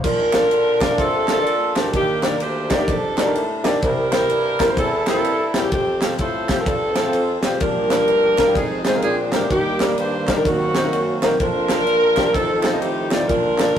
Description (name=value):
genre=uptempo gospel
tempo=127 BPM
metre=4/4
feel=swing 63% on 8ths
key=Bb major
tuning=A4 = 440 Hz
part: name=bright saxophone section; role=melody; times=0.0-13.8 s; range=Bb3 to C5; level=-20 LUFS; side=equal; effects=none
part: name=clear concert grand piano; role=accompaniment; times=0.0-13.8 s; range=Bb2 to F5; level=-22 LUFS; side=left 1 dB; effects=none
part: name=tonewheel organ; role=sustained chords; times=0.0-0.3, 7.6-13.8 s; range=D3 to C5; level=-29 LUFS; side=right 2 dB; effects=slow rotary speaker, overdrive, chorus vibrato
part: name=mellow bassoon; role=bass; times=0.0-13.8 s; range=C2 to D3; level=-27 LUFS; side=left 1 dB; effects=none
part: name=modern studio drum kit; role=drums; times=0.0-13.8 s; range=crash cymbal, kick drum, ride cymbal, snare drum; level=-24 LUFS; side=equal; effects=none
part: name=group handclap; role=percussion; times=0.3-13.7 s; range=none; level=-33 LUFS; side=right 2 dB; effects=none
room=moderate stone room reverb, RT60 1.2 s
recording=rough rehearsal-room recording, tube saturation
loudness=-16 LUFS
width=side -9 dB against mid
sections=0.0-13.8 A section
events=none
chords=0.0 Bbmaj7; 1.9 Ebmaj7; 3.8 C7; 5.7 F; 7.6 Bb6; 8.6 Fm7; 9.0 Bb9; 9.5 Ebmaj7; 10.5 Ebm6; 11.4 Bb/F; 12.3 F7